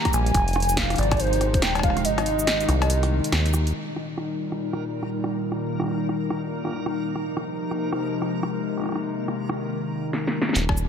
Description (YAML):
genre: IDM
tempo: 141 BPM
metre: 4/4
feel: swing 62% on 16ths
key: Eb major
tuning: A4 = 439 Hz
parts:
  - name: warbly nostalgic lead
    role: melody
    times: 0.0-3.5 s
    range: C5 to Bb5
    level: -26 LUFS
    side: right 1 dB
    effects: analog chorus, cassette tape, tape echo
  - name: hollow soft pad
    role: sustained chords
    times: 0.0-10.9 s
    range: Bb2 to G4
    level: -27 LUFS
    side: left 2 dB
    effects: chorus
  - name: deep acid bass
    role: bass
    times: 0.1-3.7, 10.6-10.9 s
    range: Eb1 to Eb2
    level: -24 LUFS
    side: equal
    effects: none
  - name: electro analog drum machine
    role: drums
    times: 0.1-10.9 s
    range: cowbell, hi-hat, rim click, shaker, snare drum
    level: -28 LUFS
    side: equal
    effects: low-pass filter on hats, low-pass filter on perc, low-pass filter on snare, digital delay
  - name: electronic kick drum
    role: drums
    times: 0.1-1.9, 10.7-10.8 s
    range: none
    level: -25 LUFS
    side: equal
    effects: none
  - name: backwards swelling texture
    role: texture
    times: 4.4-9.7 s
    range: Bb3 to Bb4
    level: -34 LUFS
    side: right 1 dB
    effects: built-in reverb
room: light reverb, digital ambience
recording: none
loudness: -22 LUFS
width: side -7 dB against mid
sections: 0.0-3.8 A section; 3.8-10.6 B section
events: kick drops out 2.0-3.8; drum fill 10.1-10.6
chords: 0.3 Fm7; 2.0 Ab; 3.8 Eb; 7.2 Fm7; 8.9 Ab